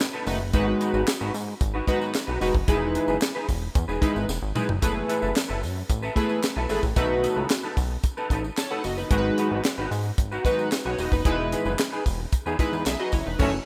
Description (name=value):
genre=early-eighties boogie funk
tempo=112 BPM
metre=4/4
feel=straight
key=unclear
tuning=A4 = 440 Hz
part: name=semi-hollow electric guitar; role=riff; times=0.0-13.6 s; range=C#4 to B4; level=-33 LUFS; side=equal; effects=ensemble chorus
part: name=tight funk drum kit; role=drums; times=0.0-13.5 s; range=crash cymbal, handclaps, hi-hat, kick drum, snare drum, toms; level=-28 LUFS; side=equal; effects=none
part: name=tambourine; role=percussion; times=0.0-13.5 s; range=none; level=-44 LUFS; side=equal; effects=none
part: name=chorused polysynth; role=accompaniment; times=0.3-13.5 s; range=G#3 to A5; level=-29 LUFS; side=equal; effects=none
part: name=chorused synth bass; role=bass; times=0.3-13.6 s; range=E1 to G#2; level=-32 LUFS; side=equal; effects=none
room=light reverb, small room ambience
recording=rough home demo mix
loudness=-25 LUFS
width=mono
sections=0.0-13.4 A section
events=drum fill 4.3-4.8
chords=0.0 B7; 0.5 Emaj7; 4.8 F#m11; 7.0 B7; 9.1 Emaj7